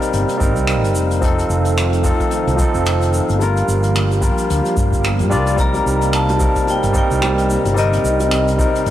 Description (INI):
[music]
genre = sunset chillout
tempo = 110 BPM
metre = 4/4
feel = swing 57% on 16ths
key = C dorian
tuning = A4 = 440 Hz
[part]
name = barky tine electric piano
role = accompaniment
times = 0.0-8.9 s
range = F3 to D5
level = -19 LUFS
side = moving between left 3 dB and right 4 dB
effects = auto-pan, tape echo
[part]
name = soft string machine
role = sustained chords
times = 0.0-8.9 s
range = C3 to G4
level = -26 LUFS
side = equal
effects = ensemble chorus
[part]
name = jazz brush drum kit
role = drums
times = 0.0-8.9 s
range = finger snaps, hi-hat, shaker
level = -26 LUFS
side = equal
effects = none
[part]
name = wind-like tuned noise texture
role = texture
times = 0.0-8.9 s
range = F5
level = -31 LUFS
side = right 1 dB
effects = built-in reverb
[part]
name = mellow fretless electric bass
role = bass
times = 0.1-8.9 s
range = F1 to G2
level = -18 LUFS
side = equal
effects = tube saturation, analog chorus
[part]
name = electronic kick drum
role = drums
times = 0.4-8.7 s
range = none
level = -20 LUFS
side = equal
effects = none
[part]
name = vibraphone with medium hard mallets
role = melody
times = 5.6-8.9 s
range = Eb5 to Bb5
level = -21 LUFS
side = left 2 dB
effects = tape echo
[part]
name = bongos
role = percussion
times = 5.7-8.7 s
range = none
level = -31 LUFS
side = right 2 dB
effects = none
[sound]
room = light reverb, small room ambience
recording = dry, gritty hardware recording, cassette tape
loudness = -14 LUFS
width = side -12 dB against mid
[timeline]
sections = 0.0-8.9 A section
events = none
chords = 0.0 Cm7; 1.2 F7; 3.4 Gm7; 5.6 Cm7